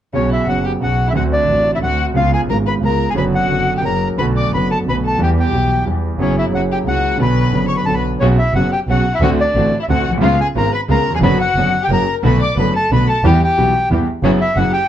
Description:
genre	tango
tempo	179 BPM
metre	3/4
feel	rubato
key	B minor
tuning	A4 = 439 Hz
part	bandoneon	melody	0.1-14.9 s	C#5 to D6	-19 LUFS	equal	none
part	rich violin	second line	0.1-14.9 s	C#4 to D5	-23 LUFS	left 6 dB	none
part	clear concert grand piano	accompaniment	0.1-14.7 s	F#1 to G4	-18 LUFS	right 1 dB	none
part	warm double bass	bass	0.1-14.7 s	F#1 to E2	-19 LUFS	right 1 dB	none
part	dark symphonic string section	stabs	8.2-14.7 s	A#3 to A4	-25 LUFS	left 2 dB	none
room	light reverb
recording	dark, warm production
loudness	-13 LUFS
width	side -10 dB against mid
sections	0.1-8.2 A section; 8.2-14.9 A section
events	none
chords	0.1 Bsus2; 1.2 D7; 2.2 C#7; 3.2 Bm/F#; 3.8 F#; 4.2 Bm7; 5.2 Em; 6.2 F#7sus4; 6.5 F#7; 7.2 Bm; 8.2 Bsus2; 9.2 D7; 10.2 C#7; 11.2 Bm/F#; 11.9 F#; 12.2 Bm7; 13.2 Em; 14.2 F#7sus4

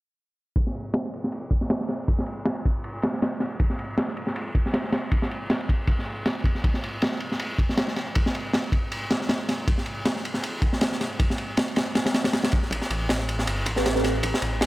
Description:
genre	drum and bass, jungle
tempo	158 BPM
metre	4/4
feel	swing 55% on 16ths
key	A minor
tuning	A4 = 442 Hz
part	crunchy breakbeat drum kit	drums	0.6-14.7 s	kick drum, ride cymbal, snare drum	-23 LUFS	equal	high-pass filter on kick, low-pass filter on kick, high-pass filter on cymbals, low-pass filter on cymbals, high-pass filter on snare, low-pass filter on snare, high-pass filter on room, low-pass filter on room
part	dark detuned saw bass	bass	12.7-14.7 s	G1 to A1	-28 LUFS	equal	none
part	deep mellow chord stab	stabs	13.8-14.1 s	C4 to B4	-26 LUFS	right 2 dB	wide subtle chorus, cassette tape, dub echo
room	small room ambience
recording	none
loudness	-23 LUFS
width	side -18 dB against mid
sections	0.6-12.7 A section; 12.7-14.7 B section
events	filter sweep on drum 0.6-12.7; build-up 12.7-14.7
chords	0.6 N.C.; 12.7 Am9

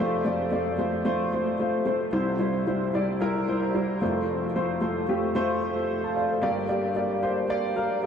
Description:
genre	pop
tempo	112 BPM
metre	4/4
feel	swing 56% on 16ths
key	F major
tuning	A4 = 439 Hz
part	warm upright piano	solo	0.0-8.1 s	F1 to A5	-24 LUFS	equal	lush chorus, tape echo
room	wet huge ambient reverb, RT60 7.1 s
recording	dreamy mix soaked in reverb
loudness	-24 LUFS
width	side -7 dB against mid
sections	0.0-8.1 A section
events	none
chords	0.0 F; 2.1 C; 4.0 F; 6.4 Gm

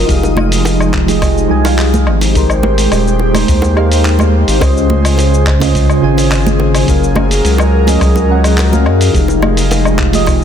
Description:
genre	sunset chillout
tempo	106 BPM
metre	4/4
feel	straight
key	F minor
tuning	A4 = 441 Hz
part	soft electric-piano-like synth keys	accompaniment	0.0-10.4 s	Db3 to Ab5	-15 LUFS	moving between left 6 dB and right 6 dB	chorus, phaser, auto-pan, digital delay
part	airy breathy pad	sustained chords	0.0-10.4 s	Db3 to C5	-16 LUFS	equal	chorus
part	round analog bass	bass	0.0-10.4 s	Eb1 to Gb2	-13 LUFS	equal	none
part	dusty soul sampler-style drum kit	drums	0.1-10.4 s	cabasa, handclaps, hi-hat, woodblock	-19 LUFS	left 2 dB	small room ambience, soft clipping on snare
part	electronic kick drum	drums	0.1-10.4 s	none	-15 LUFS	equal	small room ambience
part	bongos and congas	percussion	0.2-10.4 s	none	-20 LUFS	right 3 dB	none
room	light reverb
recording	dense, heavily limited modern master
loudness	-9 LUFS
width	side -8 dB against mid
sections	0.1-10.4 A section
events	none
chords	0.1 Fm7; 2.1 Abmaj7; 4.6 Dbmaj7; 6.9 Gbmaj7; 9.1 Fm7

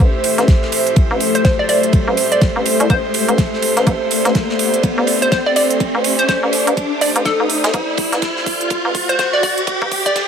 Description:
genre	bass house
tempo	124 BPM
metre	4/4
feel	swing 60% on 16ths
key	A minor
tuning	A4 = 440 Hz
part	hollow square pluck	melody	0.0-10.2 s	A4 to D5	-19 LUFS	left 1 dB	chorus, tape echo
part	dark analog pad	sustained chords	0.0-10.3 s	A3 to E5	-22 LUFS	left 3 dB	chorus, sidechain pumping
part	hollow knocking FM bass	bass	0.0-10.3 s	G1 to C2	-19 LUFS	equal	tube saturation, sidechain pumping, high-pass filter
part	electronic hi-hat	drums	0.0-10.3 s	none	-22 LUFS	right 4 dB	overdrive
part	electronic kick drum	drums	0.0-10.3 s	none	-15 LUFS	equal	overdrive
part	riser	sound effects	0.2-10.3 s	none	-22 LUFS	equal	none
part	airy breathy pad	texture	0.0-10.3 s	G4 to E5	-22 LUFS	right 2 dB	chorus, sidechain pumping
part	warm soul drum kit	drums	0.2-10.3 s	ride cymbal, snare drum	-27 LUFS	right 4 dB	high-pass filter on cymbals, high-pass filter on snare, high-pass filter on room
room	light reverb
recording	high-pass filter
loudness	-13 LUFS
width	side -7 dB against mid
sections	0.0-10.3 A section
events	build-up 0.0-10.3; filter sweep 0.0-10.3; riser 0.2-10.3; drum fill 3.9-10.3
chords	0.0 Am

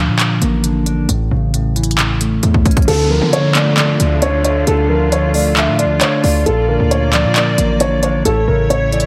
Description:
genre	hip hop, trap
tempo	134 BPM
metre	4/4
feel	half-time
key	D harmonic minor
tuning	A4 = 438 Hz
part	mellow electric guitar	accompaniment	0.0-9.1 s	A2 to D5	-20 LUFS	equal	low-pass filter
part	hard-hitting 808-style bass	bass	0.0-9.1 s	A1 to D3	-20 LUFS	equal	none
part	trap drum kit	drums	0.2-9.1 s	crash cymbal, handclaps, hi-hat, kick drum	-20 LUFS	equal	none
part	dark concert grand piano	melody	2.9-9.1 s	A4 to E5	-19 LUFS	equal	low-pass filter, digital delay
part	warm studio string section	sustained chords	2.9-9.1 s	D3 to D5	-25 LUFS	equal	none
part	downlifter	sound effects	2.9-6.5 s	none	-30 LUFS	equal	none
room	light reverb, digital ambience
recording	vinyl crackle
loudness	-14 LUFS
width	mono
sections	0.0-2.9 A section; 2.9-9.1 B section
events	drum fill 2.4-2.9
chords	0.0 Bb; 1.1 A; 2.9 Dm; 6.5 Bb; 8.3 A

